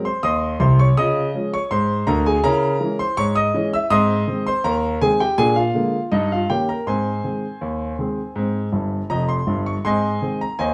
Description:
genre	ragtime piano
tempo	81 BPM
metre	2/4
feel	straight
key	Ab major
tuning	A4 = 439 Hz
part	clear concert grand piano	solo	0.0-10.7 s	F1 to Fb6	-20 LUFS	equal	none
room	wet studio reverb, RT60 0.7 s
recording	band playing live in one room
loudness	-20 LUFS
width	mono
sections	0.0-9.8 A section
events	grand piano fill 8.7-9.8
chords	0.0 Ab (rootless); 1.0 Db; 2.4 Dbm; 3.9 Ab; 5.4 Bb7; 6.1 Eb7/G; 6.9 Ab

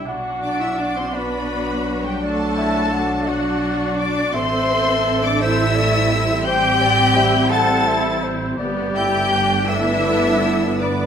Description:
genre	cinematic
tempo	56 BPM (dotted quarters)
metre	6/8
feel	rubato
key	unclear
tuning	A4 = 438 Hz
part	rich studio violin section	melody	0.0-11.1 s	F#5 to A6	-25 LUFS	left 4 dB	none
part	concert flute	second line	0.0-11.1 s	F#4 to A5	-24 LUFS	left 1 dB	none
part	mellow clarinet	second line	0.0-11.1 s	B4 to F#5	-25 LUFS	equal	none
part	rich studio violin section	second line	0.0-11.1 s	F#4 to A5	-26 LUFS	left 3 dB	none
part	rich studio viola section	accompaniment	0.0-11.1 s	A3 to B4	-25 LUFS	equal	none
part	mellow French horn section	sustained chords	0.0-11.1 s	F#3 to D4	-26 LUFS	left 3 dB	none
part	rich studio cello section	bass	0.0-11.1 s	F#3 to A4	-25 LUFS	right 3 dB	none
part	rich studio double bass section	bass	0.0-11.1 s	G1 to B1	-25 LUFS	right 4 dB	none
room	wet recital hall reverb, RT60 1.4 s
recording	none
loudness	-16 LUFS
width	side -8 dB against mid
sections	0.0-11.1 A section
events	none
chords	0.1 Bm; 4.3 Am7; 8.6 Gadd9

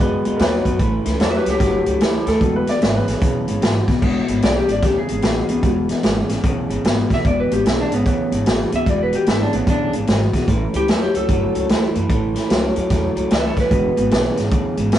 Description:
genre	electric blues shuffle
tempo	149 BPM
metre	4/4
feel	swing 64% on 8ths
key	E mixolydian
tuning	A4 = 439 Hz
part	bright upright piano	second line	0.0-3.9 s	A4 to E5	-25 LUFS	right 2 dB	none
part	electric guitar through a small old amp	riff	0.0-15.0 s	E2 to G#3	-21 LUFS	left 1 dB	none
part	upright bass	bass	0.0-15.0 s	E1 to F#2	-23 LUFS	right 1 dB	none
part	vintage drum kit	drums	0.3-15.0 s	crash cymbal, hi-hat, kick drum, snare drum	-20 LUFS	equal	none
part	electric slide guitar	melody	1.2-14.4 s	B3 to E5	-21 LUFS	left 1 dB	none
room	moderate stone room reverb, RT60 1.0 s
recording	rough rehearsal-room recording, nothing above 10.6 kHz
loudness	-16 LUFS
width	side -11 dB against mid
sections	0.0-4.0 A section; 4.0-15.0 B section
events	electric slide guitar solo 4.0-15.0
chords	0.0 B; 0.8 A7; 2.4 E; 10.5 A; 13.7 E7

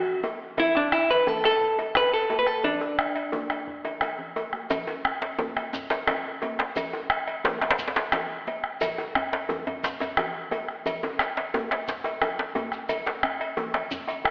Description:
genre	west african traditional, West African drum ensemble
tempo	117 BPM (dotted quarters)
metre	12/8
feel	straight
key	D major pentatonic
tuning	A4 = 441 Hz
part	vintage hollow-body jazz guitar	melody	0.0-4.3 s	D4 to B4	-22 LUFS	equal	none
part	bombo	percussion	0.1-14.3 s	none	-30 LUFS	equal	none
part	congas	percussion	0.1-13.7 s	none	-39 LUFS	equal	none
part	djembe	percussion	0.1-14.3 s	none	-34 LUFS	equal	none
part	cowbell	percussion	0.2-14.3 s	none	-33 LUFS	equal	none
part	djembe	percussion	4.7-14.1 s	none	-30 LUFS	equal	none
part	shekere	percussion	4.7-14.2 s	none	-40 LUFS	equal	none
room	wet concert hall reverb, RT60 1.9 s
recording	telephone sound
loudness	-24 LUFS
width	side -38 dB against mid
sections	0.0-4.7 A section; 4.7-14.3 B section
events	drum fill 3.8-4.7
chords	none

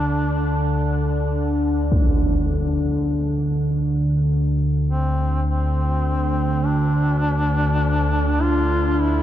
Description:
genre	dark ambient drone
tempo	free time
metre	none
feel	none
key	D minor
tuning	A4 = 439 Hz
part	warm duduk	melody	0.0-9.2 s	C4 to F4	-25 LUFS	equal	tape echo
part	analog drone	drone	0.0-9.2 s	D2 to D3	-19 LUFS	equal	chorus
part	impact	percussion	1.9-2.2 s	none	-23 LUFS	equal	low-pass filter on sfx
room	moderate huge ambient reverb, RT60 8.2 s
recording	dark, warm production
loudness	-18 LUFS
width	side -11 dB against mid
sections	0.0-9.2 A section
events	none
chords	none

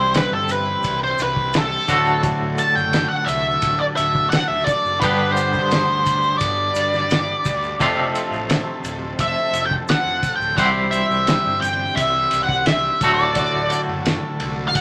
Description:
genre	psychedelic rock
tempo	86 BPM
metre	4/4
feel	straight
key	unclear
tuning	A4 = 440 Hz
part	octave-fuzz lead guitar	melody	0.0-14.8 s	A4 to A5	-22 LUFS	equal	wah, distortion
part	overdriven combo organ	sustained chords	0.0-14.8 s	E3 to B5	-34 LUFS	equal	none
part	twangy electric guitar	riff	0.0-14.8 s	D2 to C5	-26 LUFS	equal	tremolo
part	fuzz picked electric bass	bass	0.0-14.8 s	D1 to G2	-32 LUFS	equal	overdrive
part	cloth-damped thuddy drum kit	drums	0.1-14.8 s	kick drum, ride cymbal, snare drum	-27 LUFS	equal	none
part	tube shaker	percussion	0.1-14.8 s	none	-45 LUFS	equal	none
room	moderate studio ambience, RT60 0.5 s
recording	none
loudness	-19 LUFS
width	mono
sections	0.0-14.8 A section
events	lead electric guitar solo 0.0-14.8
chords	0.0 C; 1.9 D; 5.0 G; 7.8 F; 10.6 C; 13.0 D

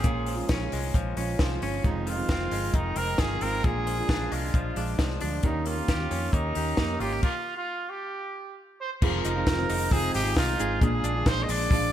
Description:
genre	jangly indie pop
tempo	134 BPM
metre	4/4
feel	straight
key	F minor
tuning	A4 = 440 Hz
part	clear trumpet	melody	0.0-11.9 s	Eb4 to Eb5	-31 LUFS	right 1 dB	slapback echo
part	fingerpicked plugged-in steel-string acoustic guitar	accompaniment	0.0-11.9 s	F2 to G4	-34 LUFS	right 8 dB	slapback echo
part	direct-recorded clean electric guitar	arpeggios	0.0-11.9 s	F2 to Ab4	-34 LUFS	left 5 dB	slapback echo
part	vintage muted fingered electric bass	bass	0.0-11.9 s	F1 to F2	-31 LUFS	equal	none
part	compact cocktail drum kit	drums	0.0-11.8 s	crash cymbal, hi-hat, kick drum, snare drum	-27 LUFS	equal	none
part	warbly lo-fi synth keys	accompaniment	9.0-11.9 s	Bb3 to Ab4	-35 LUFS	equal	chorus, phaser
room	light reverb, studio reverb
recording	none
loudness	-24 LUFS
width	side -11 dB against mid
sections	0.0-9.0 A section; 9.0-11.9 B section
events	stop 7.2-9.0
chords	0.0 Bbm7; 1.8 Fm7; 3.6 Bb7; 5.4 Eb7; 7.2 N.C.; 9.0 Fm7; 10.8 Bb7

